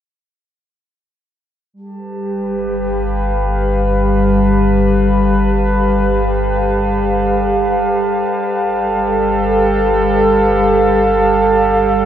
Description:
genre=ambient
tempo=free time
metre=none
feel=none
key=G mixolydian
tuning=A4 = 445 Hz
part: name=warbly tape-like pad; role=sustained chords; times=1.9-12.1 s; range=G3 to F5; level=-14 LUFS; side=equal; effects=chorus, built-in reverb
part: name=deep rumbling drone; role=bass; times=2.7-12.1 s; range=G1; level=-20 LUFS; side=equal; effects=built-in reverb
part: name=glass harmonica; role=texture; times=1.8-12.1 s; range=A4 to A5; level=-23 LUFS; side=right 4 dB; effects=none
room=wet concert hall reverb, RT60 2.0 s, studio ambience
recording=dark, warm production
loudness=-12 LUFS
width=side -10 dB against mid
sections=1.7-12.1 A section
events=fade-in on glass harmonica 1.7-12.1; fade-out on synth drone 1.7-12.1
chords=1.7 G7

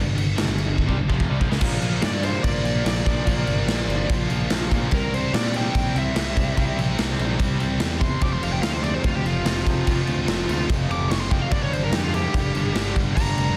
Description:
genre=hard rock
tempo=145 BPM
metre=4/4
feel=straight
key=unclear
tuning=A4 = 440 Hz
part: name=crunchy overdriven guitar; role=riff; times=0.0-13.6 s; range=F2 to C4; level=-33 LUFS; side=equal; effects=none
part: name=high-gain distorted guitar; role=riff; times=0.0-13.6 s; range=F2 to F4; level=-34 LUFS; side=equal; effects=none
part: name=tight distorted guitar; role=riff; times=0.0-13.6 s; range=F2 to C4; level=-35 LUFS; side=equal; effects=none
part: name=overdriven picked electric bass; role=bass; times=0.0-13.5 s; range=F1 to Bb2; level=-29 LUFS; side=equal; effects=none
part: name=raw garage drum kit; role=drums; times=0.2-13.5 s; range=crash cymbal, kick drum, snare drum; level=-26 LUFS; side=equal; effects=none
part: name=high-gain lead guitar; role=melody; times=2.0-13.6 s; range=F4 to D6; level=-31 LUFS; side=equal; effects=distortion, analog delay
room=light reverb, small room reverb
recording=dense, heavily limited modern master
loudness=-22 LUFS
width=mono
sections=0.0-1.6 A section; 1.6-13.6 B section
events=drum fill 0.8-1.6; lead electric guitar solo 1.6-13.6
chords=0.0 Gm; 1.6 Bb; 4.9 C; 8.2 F; 11.5 Gm

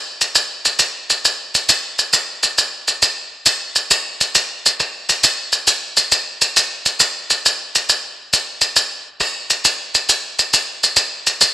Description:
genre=southern african traditional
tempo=136 BPM (dotted quarters)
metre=12/8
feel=straight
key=none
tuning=none
part: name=maracas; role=percussion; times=0.2-11.5 s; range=none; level=-14 LUFS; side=equal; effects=none
room=moderate recital hall reverb, RT60 1.7 s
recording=worn, warbling old tape, cassette tape, warbly pitch drift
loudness=-14 LUFS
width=side -16 dB against mid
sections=0.0-2.6 A section; 2.6-11.5 B section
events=none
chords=none

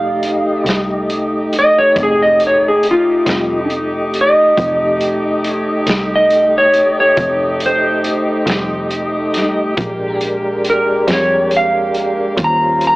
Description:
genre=slow blues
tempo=46 BPM (dotted quarters)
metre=12/8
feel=straight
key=unclear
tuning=A4 = 438 Hz
part: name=clean lap steel guitar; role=melody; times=0.0-13.0 s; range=F4 to Bb5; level=-13 LUFS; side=equal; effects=none
part: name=mellow tonewheel organ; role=sustained chords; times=0.0-13.0 s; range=G3 to Eb5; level=-20 LUFS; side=equal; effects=slow rotary speaker, chorus vibrato
part: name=warm horn section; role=sustained chords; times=0.0-13.0 s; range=G3 to G4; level=-22 LUFS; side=equal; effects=none
part: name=warm double bass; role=bass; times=0.0-13.0 s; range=F1 to F2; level=-25 LUFS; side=equal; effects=none
part: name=vintage drum kit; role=drums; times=0.2-13.0 s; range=hi-hat, kick drum, snare drum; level=-21 LUFS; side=equal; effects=none
room=moderate club reverb, RT60 0.5 s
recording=heavily compressed radio sound, AM radio sound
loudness=-12 LUFS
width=side -20 dB against mid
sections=0.0-13.0 A section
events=electric slide guitar solo 0.0-13.0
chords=0.0 F9; 9.8 Bb6; 12.4 Eb13

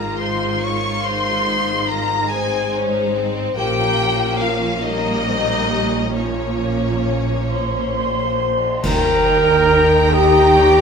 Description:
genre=cinematic, emotional film score for orchestra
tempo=45-48 BPM (dotted quarters)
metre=6/8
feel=rubato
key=Ab major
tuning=A4 = 438 Hz
part: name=warm symphonic violin section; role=melody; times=0.0-10.8 s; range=Db5 to Db6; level=-22 LUFS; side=left 3 dB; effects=none
part: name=mellow clarinet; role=second line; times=0.0-8.4 s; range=Db4 to Db5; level=-29 LUFS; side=left 4 dB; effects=none
part: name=rich symphonic violin section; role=second line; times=0.0-10.8 s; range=Bb3 to G5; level=-28 LUFS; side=left 1 dB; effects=none
part: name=rich symphonic viola section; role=accompaniment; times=0.0-10.8 s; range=Eb3 to Eb4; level=-27 LUFS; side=right 2 dB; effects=none
part: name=warm French horn section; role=sustained chords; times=0.0-10.8 s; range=Eb4 to C5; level=-19 LUFS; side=left 2 dB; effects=none
part: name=rich symphonic double bass section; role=bass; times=0.0-10.8 s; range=Ab1 to Eb2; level=-26 LUFS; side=right 3 dB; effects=none
part: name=warm symphonic cello section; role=bass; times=0.0-10.8 s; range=Ab2 to Eb3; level=-25 LUFS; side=right 4 dB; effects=none
part: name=cymbal swell, clash cymbals and concert bass drum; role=percussion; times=6.2-10.5 s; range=none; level=-28 LUFS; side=equal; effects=none
part: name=small flute group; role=second line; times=7.5-10.8 s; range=G5 to C6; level=-21 LUFS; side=right 3 dB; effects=none
part: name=clear oboe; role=second line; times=8.8-10.8 s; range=Db5 to G5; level=-24 LUFS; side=right 3 dB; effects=none
part: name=timpani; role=percussion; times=8.8-10.1 s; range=Eb3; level=-29 LUFS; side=left 1 dB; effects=none
room=moderate scoring stage reverb, RT60 1.8 s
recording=minimal, uncompressed stereo recording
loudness=-15 LUFS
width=side -6 dB against mid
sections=0.0-8.8 A section; 8.8-10.8 B section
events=band accent 8.8-9.7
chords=0.0 Absus2; 3.6 Bbmadd9; 8.8 Eb

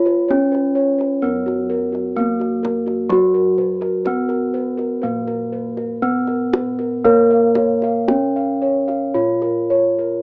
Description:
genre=Javanese gamelan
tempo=54-64 BPM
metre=4/4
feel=straight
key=Bb pelog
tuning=A4 = 438 Hz
part: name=gamelan-type bronze metallophone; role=melody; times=0.0-10.2 s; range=Gb3 to F4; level=-22 LUFS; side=equal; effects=none
part: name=gamelan-type bossed gongs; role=arpeggios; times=0.0-10.2 s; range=Gb4 to F5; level=-24 LUFS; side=equal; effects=none
part: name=gamelan-type bossed gongs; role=bass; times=0.0-10.2 s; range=Bb1 to Bb4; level=-22 LUFS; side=equal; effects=none
part: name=kendang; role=percussion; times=0.1-9.6 s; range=none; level=-27 LUFS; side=equal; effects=none
room=moderate small room reverb, RT60 0.6 s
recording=rough home demo mix, AM radio sound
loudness=-18 LUFS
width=mono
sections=0.0-10.2 A section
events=none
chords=none

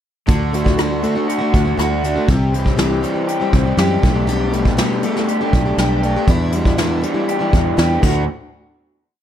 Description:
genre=folk rock and heartland rock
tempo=120 BPM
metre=4/4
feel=straight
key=D mixolydian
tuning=A4 = 442 Hz
part: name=picked plugged-in twelve-string acoustic guitar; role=accompaniment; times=0.3-8.2 s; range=E2 to G4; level=-20 LUFS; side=left 3 dB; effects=none
part: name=raw garage guitar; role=riff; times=0.3-8.2 s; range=E2 to G4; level=-20 LUFS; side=right 2 dB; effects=overdrive
part: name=fingered electric bass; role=bass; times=0.3-8.3 s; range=B1 to F#2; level=-19 LUFS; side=equal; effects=none
part: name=soft brush drum kit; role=drums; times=0.3-8.1 s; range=crash cymbal, hi-hat, kick drum, rim click, snare drum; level=-19 LUFS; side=equal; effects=none
room=light reverb, small room ambience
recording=dark, warm production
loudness=-14 LUFS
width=side -10 dB against mid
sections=0.3-8.3 verse; 8.3-9.2 final hit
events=none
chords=0.3 D; 2.3 C; 4.0 Gadd9/B; 6.3 Em7; 8.0 D; 8.3 N.C.

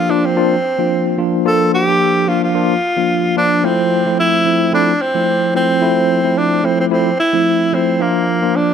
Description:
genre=afrobeats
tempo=110 BPM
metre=4/4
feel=swing 55% on 16ths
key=F major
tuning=A4 = 441 Hz
part: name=breathy tenor saxophone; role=melody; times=0.0-8.7 s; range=Bb3 to A4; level=-15 LUFS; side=right 1 dB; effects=digital delay
part: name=tine electric piano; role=accompaniment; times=0.0-8.7 s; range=F3 to F4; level=-16 LUFS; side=left 1 dB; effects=medium stereo tremolo
room=light reverb, small room ambience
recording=none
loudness=-12 LUFS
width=side -7 dB against mid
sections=0.0-3.6 A section; 3.6-8.7 B section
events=none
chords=0.0 Bb; 3.6 Fmaj7; 8.0 Bb

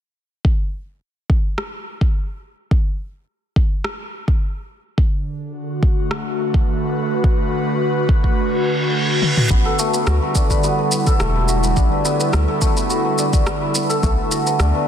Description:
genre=organic downtempo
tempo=106 BPM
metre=4/4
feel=swing 53% on 16ths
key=unclear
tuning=A4 = 440 Hz
part: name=electronic kick drum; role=drums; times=0.4-14.2 s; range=none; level=-17 LUFS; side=equal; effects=studio reverb
part: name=deep house drum kit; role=drums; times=1.6-14.7 s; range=rim click, shaker, toms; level=-25 LUFS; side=equal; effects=soft clipping on snare, studio reverb
part: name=airy breathy pad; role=sustained chords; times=5.2-14.9 s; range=D3 to B4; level=-21 LUFS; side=right 1 dB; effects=chorus, sidechain pumping
part: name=reverse cymbal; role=sound effects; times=8.5-9.5 s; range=none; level=-22 LUFS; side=right 2 dB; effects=none
part: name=santur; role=arpeggios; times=9.5-14.9 s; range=A3 to B4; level=-20 LUFS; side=left 2 dB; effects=tape echo
part: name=round analog bass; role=bass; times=9.5-14.7 s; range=E1 to D2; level=-18 LUFS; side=equal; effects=sidechain pumping
room=light reverb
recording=dense, heavily limited modern master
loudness=-16 LUFS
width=side -9 dB against mid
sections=0.4-9.5 A section; 9.5-14.9 B section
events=reverse cymbal 8.5-9.5; drum fill 9.2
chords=0.4 N.C.; 5.0 Bm7; 9.5 A7sus4; 14.0 Bm7

